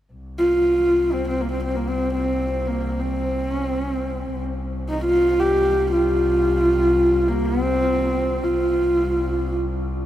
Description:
mongolian traditional, Mongolian folk; free time; A4 = 440 Hz
warm double bass; drone; 0.1-10.1 s; C2; -26 LUFS; left 1 dB
warm horsehead fiddle; melody; 0.4-9.6 s; Bb3 to G4; -19 LUFS; equal
wet huge ambient reverb, RT60 6.0 s; heard from further back in the room, faint mains hum; -18 LUFS; side -12 dB against mid
0.1-10.1 A section
free time

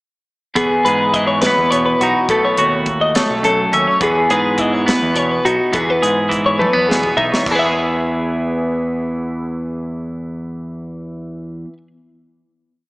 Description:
math rock and midwest emo; 70 BPM (dotted quarters); 6/8; straight; E major; A4 = 442 Hz
twelve-string electric guitar; accompaniment; 0.6-11.9 s; E2 to G#4; -19 LUFS; right 1 dB
twelve-string electric guitar; arpeggios; 0.6-11.8 s; F#4 to E5; -17 LUFS; left 1 dB; slapback echo
growling picked electric bass; bass; 0.6-11.6 s; B1 to G#2; -24 LUFS; equal; overdrive
crisp fusion drum kit; drums; 0.6-7.6 s; crash cymbal, hi-hat, kick drum, snare drum, toms; -23 LUFS; equal
wet lush hall reverb, RT60 2.1 s; big arena sound, small speaker sound; -14 LUFS; side -23 dB against mid
0.6-7.5 A section; 7.5-10.9 final chord
drum fill 6.6-7.5
0.6 Emaj9; 2.3 B9sus4; 4.0 Emaj9; 5.7 Emaj7; 7.5 E
| 0.56 1.43 | 2.29 3.15 | 4.02 4.88 | 5.74 6.60 | 7.47 8.33 | 9.19 10.05

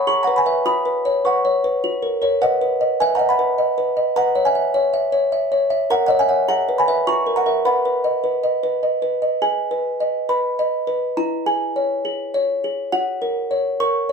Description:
classical, lullaby for music box; 103 BPM; 3/4; straight; B major; A4 = 440 Hz
music box; solo; 0.0-14.1 s; E4 to D#6; -17 LUFS; equal
light reverb; -17 LUFS; side -5 dB against mid
0.0-9.4 A section; 9.4-14.1 B section
0.1 E/G#; 0.7 F#sus4; 1.8 F#; 2.4 B; 4.2 C#m7/B; 5.9 F#/A#; 6.5 E/G#; 7.1 F#7; 7.7 B; 9.4 G#m; 11.2 C#m/E; 12.9 F#
0.07 | 0.66 1.25 1.83 | 2.42 3.00 3.58 | 4.16 4.75 5.33 | 5.91 6.49 7.07 | 7.66 8.24 8.84 | 9.42 10.01 10.59 | 11.17 11.76 12.34 | 12.92 13.50 14.08

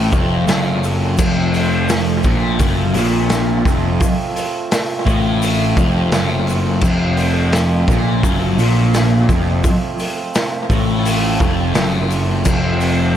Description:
psychedelic rock; 85 BPM; 4/4; straight; F major; A4 = 440 Hz
pedal harmonium; sustained chords; 0.0-13.2 s; F3 to F4; -25 LUFS; right 5 dB
thick fuzz guitar; riff; 0.0-13.2 s; F2 to Bb2; -17 LUFS; left 1 dB; distortion, phaser, dub echo
fuzz picked electric bass; bass; 0.0-13.2 s; F1 to Bb1; -19 LUFS; equal; overdrive
raw garage drum kit; drums; 0.1-13.0 s; crash cymbal, hi-hat, kick drum, snare drum; -19 LUFS; equal; dub echo
tube shaker; percussion; 0.1-13.0 s; -34 LUFS; left 13 dB
light reverb, studio ambience; echo-heavy mix; -14 LUFS; side -10 dB against mid
0.0-13.2 A section
0.0 F
0.48 | 1.19 1.89 2.60 3.30 | 4.01 4.71 5.42 6.12 | 6.83 7.53 8.23 8.94 | 9.64 10.35 11.05 11.75 | 12.46 13.16

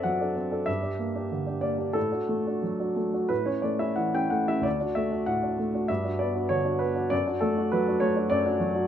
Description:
classical, romantic character piece for solo piano; 86-105 BPM; 4/4; rubato; D major; A4 = 437 Hz
warm grand piano; solo; 0.0-8.9 s; D2 to G5; -24 LUFS; equal
moderate large studio reverb, RT60 1.0 s; minimal, uncompressed stereo recording; -24 LUFS; side -9 dB against mid
0.0-8.9 A section
0.0 D7/F#; 0.7 Gm; 2.0 D/A; 3.3 A; 4.7 D; 5.9 Gmaj7 (rootless); 7.1 D/F#
0.05 0.67 1.30 | 1.96 2.64 3.30 3.98 | 4.65 5.28 5.89 6.51 | 7.12 7.72 8.30

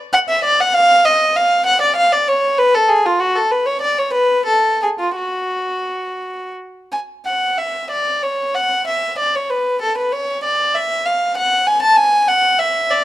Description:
classical, baroque-style suite movement for unaccompanied violin; 84-99 BPM; 3/4; rubato; F# minor; A4 = 440 Hz
warm violin; solo; 0.1-13.0 s; E#4 to A5; -14 LUFS; equal
light reverb; dark, warm production; -14 LUFS; side -14 dB against mid
0.0-7.2 A section; 7.2-13.0 B section
0.12 0.74 | 1.36 1.97 2.58 | 3.19 3.81 4.46 | 5.16 5.86 6.55 | 7.24 7.88 8.52 | 9.15 9.78 10.41 | 11.04 11.67 12.28 | 12.90

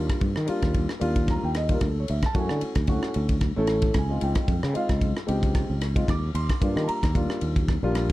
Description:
electric jazz fusion; 113 BPM; 4/4; swing 55% on 16ths; Eb major; A4 = 440 Hz
dark grand piano; accompaniment; 0.0-8.1 s; G3 to D6; -28 LUFS; equal
sustaining fretless electric bass; bass; 0.0-8.1 s; A1 to Eb3; -26 LUFS; equal
crisp fusion drum kit; drums; 0.1-8.1 s; kick drum, ride cymbal, rim click; -26 LUFS; equal
little or no reverb; dark, warm production, faint mains hum; -22 LUFS; side -17 dB against mid
0.0-8.1 A section
0.0 Ebmaj9; 1.8 Dmaj9; 4.0 Dbmaj9; 6.1 Ebmaj9
0.22 0.75 1.29 | 1.82 2.35 2.88 3.42 | 3.95 4.48 5.02 5.55 | 6.08 6.62 7.15 7.68

